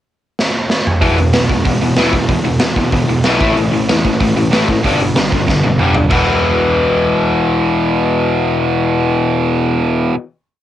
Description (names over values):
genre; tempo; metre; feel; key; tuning
punk rock; 189 BPM; 4/4; straight; E minor; A4 = 439 Hz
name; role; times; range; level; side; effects
raw garage drum kit; drums; 0.4-6.2 s; crash cymbal, hi-hat, kick drum, snare drum, toms; -15 LUFS; right 1 dB; cassette tape
raw garage guitar; riff; 1.0-10.2 s; E2 to A3; -16 LUFS; left 6 dB; overdrive, cassette tape
tight distorted guitar; riff; 1.0-10.2 s; E2 to A3; -18 LUFS; right 7 dB; distortion, cassette tape
fuzz picked electric bass; bass; 1.0-10.1 s; E1 to E2; -20 LUFS; right 1 dB; overdrive
room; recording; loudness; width
moderate booth ambience, RT60 0.2 s; home recording on cassette; -12 LUFS; side -12 dB against mid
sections
0.0-1.0 pickup bar; 1.0-6.1 verse; 6.1-8.6 final chord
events
drum fill 0.4-1.0, 5.5-6.1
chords
0.0 N.C.; 1.0 E5; 3.4 A5; 4.8 G5; 6.1 E5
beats
0.07 0.39 0.70 | 1.02 1.34 1.66 1.98 | 2.29 2.61 2.93 3.25 | 3.57 3.88 4.20 4.52 | 4.84 5.16 5.47 5.79 | 6.11 6.42 6.74 7.06 | 7.38 7.69 8.01 8.32